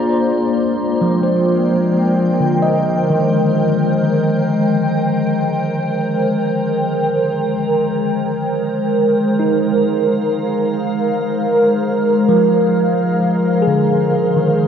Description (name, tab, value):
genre	ambient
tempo	free time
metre	none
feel	none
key	Ab lydian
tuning	A4 = 443 Hz
part	glassy FM pad	sustained chords	0.0-14.7 s	Ab3 to G5	-15 LUFS	equal	ensemble chorus, built-in reverb, phaser
part	tine electric piano	arpeggios	0.0-14.7 s	D3 to Bb5	-19 LUFS	equal	medium stereo tremolo, diffuse ambient delay
room	wet cathedral reverb, RT60 5.5 s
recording	none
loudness	-14 LUFS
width	side -8 dB against mid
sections	0.2-14.7 A section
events	none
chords	0.2 Abmaj7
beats	free time